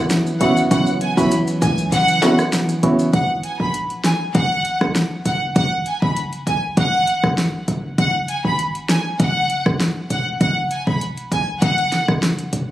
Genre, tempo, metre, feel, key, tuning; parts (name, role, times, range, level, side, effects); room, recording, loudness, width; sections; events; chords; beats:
dancehall; 99 BPM; 4/4; straight; G# minor; A4 = 440 Hz
fingerpicked plugged-in steel-string acoustic guitar; arpeggios; 0.0-3.7 s; F#2 to B3; -22 LUFS; equal; tape echo
deep house drum kit; drums; 0.1-12.7 s; hi-hat, kick drum, rim click, snare drum; -22 LUFS; equal; overdrive
maracas and timbales; percussion; 0.1-3.1 s; -28 LUFS; left 1 dB
clear studio violin section; melody; 0.4-12.1 s; F#5 to B5; -21 LUFS; equal; tape echo
percussive organ stab; accompaniment; 0.4-3.1 s; B3 to F#4; -19 LUFS; right 1 dB; chorus
short 808-style bass; bass; 0.4-12.7 s; E1 to C#2; -22 LUFS; equal
moderate echo chamber reverb, RT60 2.3 s; recorded on a phone in the room, club reverb; -16 LUFS; side -14 dB against mid
0.0-3.1 A section; 3.1-12.7 B section
kick muted 1.9-3.1
0.0 F#7sus4; 3.1 G#m7; 8.0 Esus2
0.10 | 0.71 1.32 1.92 2.53 | 3.13 3.74 4.35 4.95 | 5.56 6.17 6.77 7.38 | 7.98 8.59 9.20 9.80 | 10.41 11.01 11.62 12.23